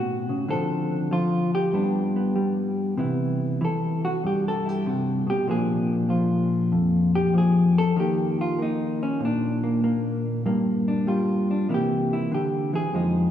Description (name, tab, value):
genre	solo jazz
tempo	96 BPM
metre	4/4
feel	swing 67% on 8ths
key	unclear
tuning	A4 = 440 Hz
part	hollow-body jazz guitar	solo	0.0-13.3 s	F2 to A4	-21 LUFS	left 1 dB	none
room	wet church reverb, RT60 3.4 s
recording	recorded in a church or concert hall, small room ambience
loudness	-21 LUFS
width	side -10 dB against mid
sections	0.0-3.0 A section; 3.0-13.3 B section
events	hollow-body jazz guitar solo 3.0-13.3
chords	0.5 Dm7; 1.7 G; 3.0 Cmaj7; 5.5 Bb; 8.0 Eb5; 10.4 Gm7; 11.7 C7